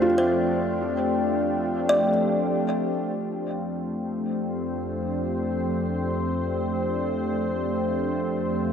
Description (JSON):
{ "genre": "ambient", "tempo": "free time", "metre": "none", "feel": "none", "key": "F major", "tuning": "A4 = 439 Hz", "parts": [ { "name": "felt-muted upright piano", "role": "melody", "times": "0.0-2.1 s", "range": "F4", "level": "-27 LUFS", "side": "right 1 dB", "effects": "dub echo" }, { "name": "evolving wavetable pad", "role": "sustained chords", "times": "0.0-8.7 s", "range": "F2 to C5", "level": "-26 LUFS", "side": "equal", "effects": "chorus, built-in reverb" }, { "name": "deep rumbling drone", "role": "bass", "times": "0.0-3.1 s", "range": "F2", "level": "-43 LUFS", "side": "left 1 dB", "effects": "built-in reverb" }, { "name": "organ-like drone", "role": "drone", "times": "0.0-8.7 s", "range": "F3 to C4", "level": "-30 LUFS", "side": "left 1 dB", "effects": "ensemble chorus, built-in reverb" }, { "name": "kalimba", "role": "arpeggios", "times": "0.2-3.1 s", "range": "C5 to D5", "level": "-27 LUFS", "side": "left 1 dB", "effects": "dub echo" } ], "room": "wet spring reverb, RT60 2.7 s", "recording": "echo-heavy mix", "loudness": "-23 LUFS", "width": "side -7 dB against mid", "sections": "0.0-3.2 A section; 3.2-8.7 B section", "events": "filter sweep on ambient pad 3.2-8.7", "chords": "0.0 F", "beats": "free time" }